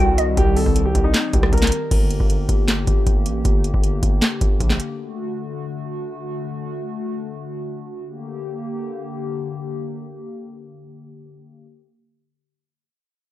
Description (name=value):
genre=hip hop, trap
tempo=156 BPM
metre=4/4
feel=half-time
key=G harmonic minor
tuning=A4 = 437 Hz
part: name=warm concert grand piano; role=melody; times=0.0-1.9 s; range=Eb4 to Bb4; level=-24 LUFS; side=equal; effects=low-pass filter, tape echo
part: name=hollow soft pad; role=sustained chords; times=0.0-11.7 s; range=D3 to G4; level=-28 LUFS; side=left 2 dB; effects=chorus
part: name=distorted 808-style bass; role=bass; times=0.0-4.8 s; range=G1 to C2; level=-21 LUFS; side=equal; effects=distortion
part: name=booming analog drum machine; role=drums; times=0.2-4.9 s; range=crash cymbal, handclaps, hi-hat, kick drum, rim click, snare drum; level=-18 LUFS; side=equal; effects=overdrive
room=little or no reverb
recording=rough home demo mix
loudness=-19 LUFS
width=side -14 dB against mid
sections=0.0-1.9 A section; 1.9-8.1 B section; 8.1-11.1 C section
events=none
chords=0.0 Cm; 1.9 Gm; 5.0 D; 8.1 Gm